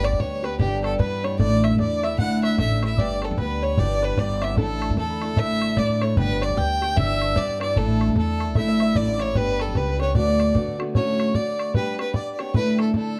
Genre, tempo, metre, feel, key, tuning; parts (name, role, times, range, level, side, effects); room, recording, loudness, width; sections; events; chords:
celtic folk, Celtic hornpipe; 151 BPM; 4/4; swing 62% on 8ths; A4 = 439 Hz
rich fiddle; melody; 0.0-13.2 s; G4 to G5; -28 LUFS; equal; plate reverb
mellow hollow wooden whistle; second line; 0.0-13.2 s; G5 to G6; -39 LUFS; equal
open-back banjo; second line; 0.0-13.2 s; G4 to G5; -38 LUFS; equal
fingerpicked old ladder-braced acoustic guitar; accompaniment; 0.0-13.2 s; D2 to G4; -28 LUFS; equal
upright bass; bass; 0.0-10.9 s; G1 to D3; -28 LUFS; equal
bodhran; percussion; 0.0-13.1 s; -27 LUFS; equal
light reverb; dark, warm production; -22 LUFS; mono
0.0-10.9 A section; 10.9-13.2 B section
0.0 G; 0.6 Em7/G; 1.4 Asus4; 3.0 G; 3.8 Em7/G; 4.6 Asus4; 6.2 G; 7.0 Em7/G; 7.8 Asus4; 9.4 G; 10.2 D6; 10.9 Dmaj7; 11.7 G; 12.5 Asus4